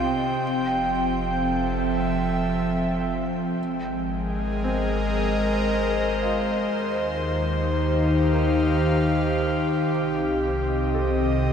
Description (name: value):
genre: ambient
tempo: 57 BPM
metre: 3/4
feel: straight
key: unclear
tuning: A4 = 440 Hz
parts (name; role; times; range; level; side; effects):
- airy breathy pad; sustained chords; 0.0-11.5 s; C3 to G5; -22 LUFS; equal; chorus, shimmer reverb
- felt-muted upright piano; arpeggios; 0.0-11.5 s; C4 to Bb4; -36 LUFS; left 1 dB; none
- round analog bass; bass; 0.0-11.5 s; F1 to Eb2; -29 LUFS; equal; none
room: wet huge ambient reverb, RT60 8.1 s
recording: in a vast, echoing space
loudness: -21 LUFS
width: side -7 dB against mid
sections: 0.0-11.5 A section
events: none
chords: 0.4 Fmaj7; 3.6 Abadd9; 6.7 Eb6; 9.9 Cm